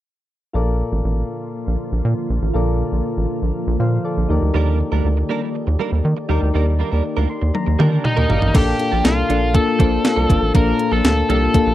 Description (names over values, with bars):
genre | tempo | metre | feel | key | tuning
1980s-style pop | 120 BPM | 4/4 | straight | Bb major | A4 = 437 Hz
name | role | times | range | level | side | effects
soft electric-piano-like synth keys | accompaniment | 0.5-11.7 s | Bb2 to C6 | -22 LUFS | left 4 dB | chorus
glassy FM pad | sustained chords | 1.1-11.7 s | D3 to A5 | -27 LUFS | equal | ensemble chorus, built-in reverb
rubbery square bass | bass | 0.5-11.7 s | Ab1 to Eb3 | -18 LUFS | equal | none
direct-recorded clean electric guitar | riff | 4.5-11.7 s | F3 to Bb4 | -26 LUFS | right 9 dB | analog chorus, slapback echo
clean 12-bit digital drum machine | drums | 7.5-11.7 s | crash cymbal, hi-hat, kick drum, snare drum, toms | -17 LUFS | equal | overdrive
biting lead guitar | melody | 8.1-11.7 s | Eb4 to Bb4 | -21 LUFS | equal | overdrive, slapback echo
room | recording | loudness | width
little or no reverb | dry, close 1970s-style studio recording | -16 LUFS | side -14 dB against mid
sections
0.5-8.5 A section; 8.5-11.7 B section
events
synth keys fill 7.0-8.5; drum fill 7.5-8.5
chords
0.5 Bbmaj7; 4.3 Ebmaj7; 8.5 Bbmaj7